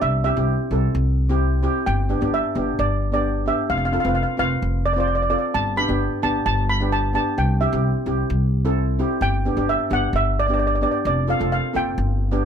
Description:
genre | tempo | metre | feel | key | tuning
calypso | 130 BPM | 4/4 | straight | G major | A4 = 440 Hz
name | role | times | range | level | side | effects
steel pan | melody | 0.0-12.4 s | D5 to B5 | -23 LUFS | right 1 dB | none
steel pan | accompaniment | 0.0-12.4 s | B3 to C5 | -24 LUFS | equal | none
upright bass | bass | 0.0-12.4 s | F1 to C2 | -22 LUFS | equal | none
room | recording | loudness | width
light reverb | close, detailed microphones | -18 LUFS | side -7 dB against mid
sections
0.0-12.4 A section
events
none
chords
0.0 C; 1.9 G; 3.7 F; 5.5 G; 7.4 C; 9.2 G; 11.1 F

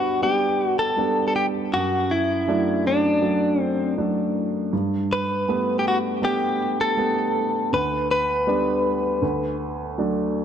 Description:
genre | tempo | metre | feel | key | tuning
pop | 80 BPM | 4/4 | straight | G major | A4 = 444 Hz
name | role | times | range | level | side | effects
direct-recorded clean electric guitar | melody | 0.0-9.6 s | D4 to B4 | -22 LUFS | left 1 dB | none
warm baby grand piano | accompaniment | 0.0-10.4 s | D2 to D4 | -24 LUFS | right 2 dB | none
room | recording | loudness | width
moderate plate reverb, RT60 3.4 s | dark, warm production | -20 LUFS | side -8 dB against mid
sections
0.0-10.4 A section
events
none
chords
0.0 G; 1.7 D/F#; 4.7 Gadd9; 7.7 G/D; 9.2 D

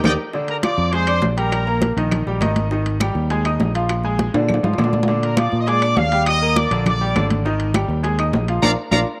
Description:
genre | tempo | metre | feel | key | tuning
latin, salsa | 203 BPM | 4/4 | straight | unclear | A4 = 440 Hz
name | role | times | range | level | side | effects
brilliant trumpet section | melody | 0.0-1.9, 5.2-9.0 s | Bb4 to Eb6 | -24 LUFS | equal | none
fingered electric bass | bass | 0.0-9.0 s | Ab1 to Bb2 | -23 LUFS | equal | none
bongos | percussion | 0.0-9.0 s | none | -33 LUFS | equal | none
congas | percussion | 0.0-9.0 s | none | -26 LUFS | equal | none
timbales | percussion | 0.0-9.0 s | none | -30 LUFS | equal | none
bright concert grand piano | accompaniment | 0.1-9.0 s | D3 to Eb6 | -25 LUFS | equal | none
claves | percussion | 0.1-9.0 s | none | -34 LUFS | equal | none
room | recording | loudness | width
moderate spring reverb, RT60 2.5 s | none | -19 LUFS | mono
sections
0.3-9.2 A section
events
drum fill 0.0-0.3, 4.3-5.1; band accent 0.0-0.3, 8.6-9.2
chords
0.3 Bb7; 1.5 Eb/Bb; 2.7 Ab5; 3.9 Bb7; 6.3 Ebmaj7; 7.4 Ab5; 8.6 Bb

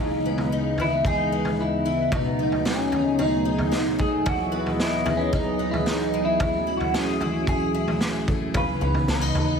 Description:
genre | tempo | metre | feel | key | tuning
dream pop | 112 BPM | 4/4 | straight | C# minor | A4 = 440 Hz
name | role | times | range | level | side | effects
electric guitar at the edge of break-up | melody | 0.0-9.6 s | C#4 to B4 | -26 LUFS | equal | phaser, digital delay
hollow soft pad | sustained chords | 0.0-9.6 s | C#3 to D#5 | -27 LUFS | right 2 dB | chorus
picked twelve-string acoustic guitar | arpeggios | 0.0-9.6 s | F#2 to G#4 | -29 LUFS | left 5 dB | ensemble chorus, digital delay
raw garage drum kit | drums | 0.4-9.5 s | kick drum, snare drum, toms | -28 LUFS | right 1 dB | none
plucky analog bass | bass | 8.5-9.6 s | C#2 to D#2 | -27 LUFS | right 1 dB | none
room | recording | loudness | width
moderate scoring stage reverb, RT60 1.7 s, small room reverb | none | -21 LUFS | side -6 dB against mid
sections
0.0-9.6 A section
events
none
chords
0.0 C#m9; 2.1 B13; 4.3 Emaj7; 6.4 F#m9; 8.6 C#m9

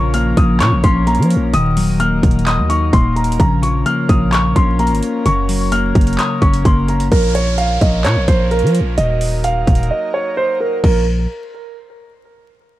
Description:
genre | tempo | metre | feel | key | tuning
hip hop, trap | 129 BPM | 4/4 | half-time | Bb minor | A4 = 441 Hz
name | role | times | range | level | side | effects
dark concert grand piano | melody | 0.0-11.1 s | Bb4 to F6 | -19 LUFS | right 1 dB | low-pass filter, ping-pong delay
clean electric guitar | accompaniment | 0.0-7.1 s | Db3 to Eb5 | -19 LUFS | left 3 dB | low-pass filter
hand-pumped harmonium | sustained chords | 0.0-11.1 s | F3 to Bb4 | -27 LUFS | right 2 dB | none
growling 808-style bass | bass | 0.0-11.3 s | Eb1 to F3 | -16 LUFS | equal | none
trap drum kit | drums | 0.1-10.9 s | crash cymbal, handclaps, hi-hat, kick drum | -16 LUFS | equal | none
downlifter | sound effects | 7.1-10.8 s | none | -29 LUFS | right 1 dB | none
room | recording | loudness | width
digital ambience | dark, warm production, vinyl crackle | -12 LUFS | side -15 dB against mid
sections
0.0-7.1 A section; 7.1-10.8 B section; 10.8-12.7 C section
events
break 9.9-10.8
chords
0.0 Bbm; 1.5 Ebm; 3.4 Bbm; 5.3 Gb; 7.1 Bbm; 9.0 Ebm; 10.8 Bbm

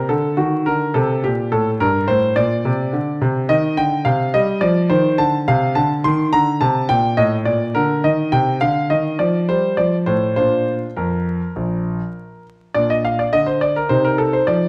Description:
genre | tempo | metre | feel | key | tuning
classical-period piano sonatina | 105 BPM | 4/4 | straight | Bb major | A4 = 440 Hz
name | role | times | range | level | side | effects
clear concert grand piano | solo | 0.0-14.7 s | Bb1 to C6 | -18 LUFS | equal | none
room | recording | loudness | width
wet recital hall reverb, RT60 1.4 s | vinyl crackle | -18 LUFS | mono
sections
0.0-12.8 A section; 12.8-14.7 B section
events
none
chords
0.1 Cm13; 1.2 Gm; 3.5 Cm; 4.6 F5; 5.8 Cm13; 6.9 Ebmaj7#11/A; 8.0 Cmadd9; 9.2 Fsus2; 9.8 F; 10.4 Bb; 13.9 F5/C

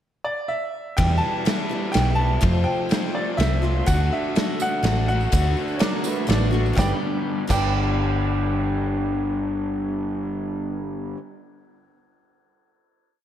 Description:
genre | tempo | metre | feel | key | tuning
folk rock and heartland rock | 124 BPM | 3/4 | straight | G major | A4 = 440 Hz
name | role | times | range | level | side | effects
bright grand piano | melody | 0.2-11.1 s | D5 to A5 | -28 LUFS | equal | slapback echo
picked steel-string acoustic guitar | accompaniment | 1.0-11.2 s | E2 to G4 | -28 LUFS | left 3 dB | none
raw garage guitar | riff | 1.0-11.2 s | E2 to G4 | -30 LUFS | right 2 dB | overdrive
hollow-body short-scale fingered electric bass | bass | 1.0-11.1 s | G1 to F2 | -23 LUFS | equal | none
loose indie drum kit | drums | 1.0-7.6 s | crash cymbal, kick drum, ride cymbal, snare drum | -25 LUFS | equal | none
tambourine | percussion | 3.9-7.6 s | none | -40 LUFS | right 13 dB | none
clear upright piano | second line | 5.8-11.1 s | D4 to D5 | -32 LUFS | right 4 dB | slapback echo
room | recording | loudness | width
moderate lush hall reverb, RT60 1.9 s | big arena sound | -20 LUFS | side -10 dB against mid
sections
0.0-1.0 pickup bar; 1.0-6.8 pre-chorus; 6.8-9.7 final chord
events
none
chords
0.0 N.C.; 1.0 Em; 2.4 F; 3.9 D; 6.8 G

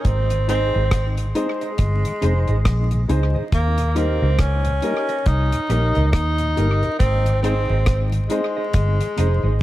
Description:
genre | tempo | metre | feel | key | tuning
roots reggae | 69 BPM | 4/4 | swing 60% on 16ths | unclear | A4 = 439 Hz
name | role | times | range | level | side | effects
warm tenor saxophone | melody | 0.0-9.6 s | Ab3 to Eb4 | -24 LUFS | right 1 dB | dub echo
deep reggae drum kit | drums | 0.0-9.4 s | hi-hat, kick drum, rim click | -22 LUFS | equal | tape echo
vintage muted fingered electric bass | bass | 0.1-9.6 s | F1 to Eb2 | -19 LUFS | equal | none
mellow tonewheel organ | accompaniment | 0.3-9.5 s | Eb2 to Eb4 | -30 LUFS | left 1 dB | chorus vibrato, slow rotary speaker, tape echo
mellow electric guitar | accompaniment | 0.5-9.5 s | Eb4 to Eb5 | -30 LUFS | right 4 dB | spring reverb, dub echo
dark upright piano | stabs | 0.5-9.4 s | Eb4 to C5 | -29 LUFS | left 4 dB | none
room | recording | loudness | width
little or no reverb | echo-heavy mix, vinyl crackle | -17 LUFS | side -15 dB against mid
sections
0.0-9.6 A section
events
none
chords
0.1 Ab; 3.5 Eb; 7.0 Ab

